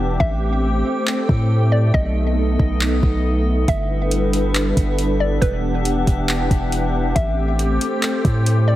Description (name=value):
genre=hip hop, atmospheric cloud-rap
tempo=138 BPM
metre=4/4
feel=half-time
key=unclear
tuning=A4 = 441 Hz
part: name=sweeping resonant pad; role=sustained chords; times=0.0-8.8 s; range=E3 to F#5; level=-22 LUFS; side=equal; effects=wide subtle chorus, sidechain pumping
part: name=long sustained 808-style bass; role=bass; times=0.0-8.8 s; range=E1 to A2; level=-19 LUFS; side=equal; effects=none
part: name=drifting glass-harmonics texture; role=texture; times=0.0-8.8 s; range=B3 to G5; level=-32 LUFS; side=left 1 dB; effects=chorus, built-in reverb
part: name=hollow square pluck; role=melody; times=0.2-8.8 s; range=B4 to E5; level=-26 LUFS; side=left 1 dB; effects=chorus, digital delay
part: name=smooth R&B drum kit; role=drums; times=0.2-8.6 s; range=handclaps, hi-hat, kick drum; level=-21 LUFS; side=equal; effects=none
room=digital ambience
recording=heavily compressed radio sound, multiband compression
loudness=-16 LUFS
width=side -14 dB against mid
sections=0.0-8.8 A section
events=break 0.0-3.7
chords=0.2 Am7; 1.9 B7; 3.7 G6; 5.4 Em7; 7.2 Am7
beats=| 0.20 0.64 1.07 1.51 | 1.94 2.38 2.81 3.25 | 3.68 4.12 4.55 4.99 | 5.42 5.86 6.29 6.72 | 7.16 7.59 8.03 8.46